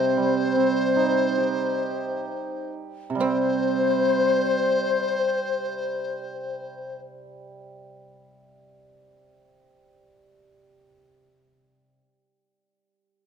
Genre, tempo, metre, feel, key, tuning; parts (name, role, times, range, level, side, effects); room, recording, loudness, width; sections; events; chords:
chinese traditional, Chinese chamber ensemble; 61-81 BPM; 4/4; rubato; C yu mode; A4 = 440 Hz
mellow large dizi; melody; 0.0-7.0 s; C5; -27 LUFS; left 1 dB
mellow hollow xiao; second line; 0.0-7.0 s; C5; -26 LUFS; left 6 dB
pipa; second line; 0.0-7.0 s; C4; -34 LUFS; right 6 dB
hammered dulcimer; accompaniment; 0.0-11.9 s; C3 to G4; -27 LUFS; right 6 dB
moderate concert hall reverb, RT60 2.1 s; dark, warm production; -22 LUFS; side -7 dB against mid
0.0-3.2 A section; 3.2-7.0 B section
slowing down 0.0-3.2